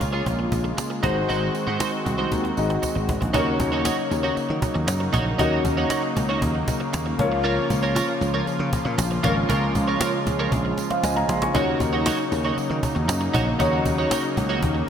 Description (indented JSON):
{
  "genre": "1980s-style pop",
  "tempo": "117 BPM",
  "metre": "4/4",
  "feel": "straight",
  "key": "Eb dorian",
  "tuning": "A4 = 440 Hz",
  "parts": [
    { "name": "warm grand piano", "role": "accompaniment", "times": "0.0-14.9 s", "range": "Bb3 to Db6", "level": "-27 LUFS", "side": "left 3 dB", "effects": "tube saturation, wide subtle chorus" },
    { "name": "brassy analog pad", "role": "sustained chords", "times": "0.0-14.9 s", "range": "Db3 to Gb4", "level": "-27 LUFS", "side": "equal", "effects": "chorus" },
    { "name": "twelve-string electric guitar", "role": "riff", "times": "0.0-14.8 s", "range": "Eb4 to Db5", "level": "-28 LUFS", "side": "right 3 dB", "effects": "analog chorus, digital delay" },
    { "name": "slap bass", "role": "bass", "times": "0.0-14.8 s", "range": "Ab1 to Eb3", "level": "-26 LUFS", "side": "equal", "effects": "none" },
    { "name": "cajon", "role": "drums", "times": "0.0-14.8 s", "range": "none", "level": "-29 LUFS", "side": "equal", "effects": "none" },
    { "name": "tambourine", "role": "percussion", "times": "0.0-14.7 s", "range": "none", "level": "-40 LUFS", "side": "right 9 dB", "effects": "none" }
  ],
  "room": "moderate lush hall reverb, RT60 1.9 s, small room ambience",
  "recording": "bright 1980s-style digital production",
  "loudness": "-20 LUFS",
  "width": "side -8 dB against mid",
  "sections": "0.0-3.3 A section; 3.3-14.9 B section",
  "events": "drum fill 2.3-3.3, 10.5-11.5",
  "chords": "0.0 Bbm7; 1.0 Ab7; 3.3 Ebm7; 7.2 Bbm; 11.5 Ebm7"
}